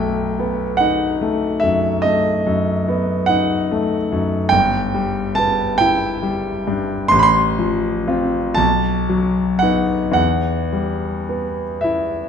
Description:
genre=classical, romantic nocturne for solo piano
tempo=36-50 BPM (dotted quarters)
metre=12/8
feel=rubato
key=E minor from 4.5 s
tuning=A4 = 440 Hz
part: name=clear concert grand piano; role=solo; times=0.0-12.3 s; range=G1 to C6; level=-16 LUFS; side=equal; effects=none
room=wet recital hall reverb, RT60 1.7 s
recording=none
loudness=-16 LUFS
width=side -7 dB against mid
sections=0.0-12.3 A section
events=none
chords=0.0 B7; 4.5 Em/G; 7.1 F/A; 8.6 B7; 10.2 Em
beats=0.79 2.05 3.30 | 4.52 5.81 7.12 8.58 | 10.17 11.85

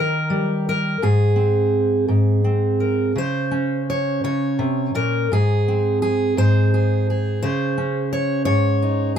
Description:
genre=folk, solo fingerstyle acoustic guitar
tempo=56 BPM (dotted quarters)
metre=6/8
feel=straight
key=Ab major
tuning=A4 = 439 Hz
part: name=fingerpicked steel-string acoustic guitar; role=solo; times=0.0-9.2 s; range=Ab2 to Db5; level=-17 LUFS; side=equal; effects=none
room=little or no reverb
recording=close, detailed microphones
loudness=-17 LUFS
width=side -8 dB against mid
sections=0.0-3.2 A section; 3.2-9.2 B section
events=none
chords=0.0 Eb; 1.0 Abadd9; 3.2 Bbmadd9; 5.3 Ab; 7.4 Dbsus2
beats=| 1.02 2.08 | 3.16 4.24 | 5.31 6.37 | 7.42 8.47

